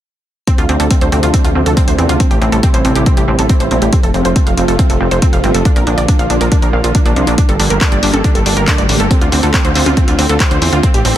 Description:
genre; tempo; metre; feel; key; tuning
uplifting trance; 139 BPM; 4/4; straight; D minor; A4 = 442 Hz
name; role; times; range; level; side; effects
wide unison pluck; arpeggios; 0.5-11.1 s; C4 to F5; -17 LUFS; right 3 dB; sidechain pumping, dub echo
electronic kick drum; drums; 0.5-10.9 s; none; -12 LUFS; equal; overdrive
punchy analog drum machine; drums; 0.5-11.1 s; congas, handclaps, hi-hat; -20 LUFS; left 1 dB; sidechain pumping on hats, sidechain pumping on perc
supersaw pad; sustained chords; 0.6-11.2 s; C3 to G4; -18 LUFS; equal; phaser, sidechain pumping, low-pass filter
plucky analog bass; bass; 0.6-11.1 s; F1 to E2; -15 LUFS; equal; sidechain pumping
room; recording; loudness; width
little or no reverb; none; -10 LUFS; side -12 dB against mid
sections
0.5-11.2 A section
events
filter sweep on supersaw synth 0.5-11.2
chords
0.5 Dm7; 2.2 Am7; 3.9 F; 5.7 Bb; 7.4 Gmadd9; 9.1 Dm7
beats
| 0.47 0.91 1.34 1.77 | 2.20 2.63 3.06 3.50 | 3.93 4.36 4.79 5.22 | 5.65 6.09 6.52 6.95 | 7.38 7.81 8.24 8.68 | 9.11 9.54 9.97 10.40 | 10.83

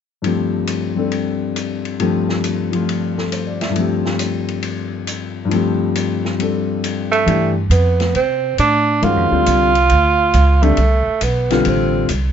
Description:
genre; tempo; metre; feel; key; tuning
modal jazz; 137 BPM; 4/4; swing 66% on 8ths; G mixolydian; A4 = 440 Hz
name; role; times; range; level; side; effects
clear concert grand piano; accompaniment; 0.2-12.1 s; G2 to E5; -18 LUFS; left 4 dB; none
open jazz drum kit; drums; 0.2-12.2 s; hi-hat, ride cymbal, snare drum; -28 LUFS; left 2 dB; none
warm tenor saxophone; melody; 7.1-12.1 s; A3 to F4; -16 LUFS; right 5 dB; none
upright bass; bass; 7.3-12.3 s; A1 to C3; -16 LUFS; right 1 dB; none
room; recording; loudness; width
light reverb; dark, warm production, nothing above 7.8 kHz; -15 LUFS; side -8 dB against mid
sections
0.2-7.3 A section; 7.3-12.3 B section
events
none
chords
0.2 G9sus4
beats
| 0.25 0.69 1.13 1.57 | 2.00 2.44 2.88 3.32 | 3.76 4.20 4.64 5.08 | 5.52 5.96 6.39 6.83 | 7.27 7.71 8.15 8.59 | 9.03 9.46 9.90 10.34 | 10.78 11.22 11.66 12.10

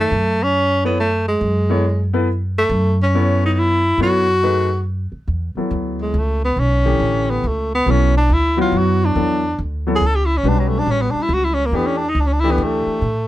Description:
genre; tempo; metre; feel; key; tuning
modal jazz; 140 BPM; 3/4; swing 65% on 8ths; F# dorian, E dorian from 5.3 s; A4 = 444 Hz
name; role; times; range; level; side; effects
warm tenor saxophone; melody; 0.0-13.3 s; F#3 to A4; -18 LUFS; equal; none
warm baby grand piano; accompaniment; 0.0-13.0 s; D3 to E5; -21 LUFS; left 2 dB; none
upright bass; bass; 0.0-13.3 s; A1 to A2; -19 LUFS; equal; none
room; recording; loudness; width
little or no reverb; close, detailed microphones; -15 LUFS; side -14 dB against mid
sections
0.0-5.3 A section; 5.3-13.3 B section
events
tenor saxophone solo 5.3-13.3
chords
0.0 F#m7; 5.3 E13sus4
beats
| 0.12 0.55 0.98 | 1.41 1.84 2.27 | 2.70 3.13 3.56 | 3.99 4.42 4.85 | 5.28 5.71 6.14 | 6.57 7.00 7.43 | 7.86 8.29 8.72 | 9.15 9.58 10.01 | 10.44 10.87 11.30 | 11.73 12.16 12.59 | 13.02

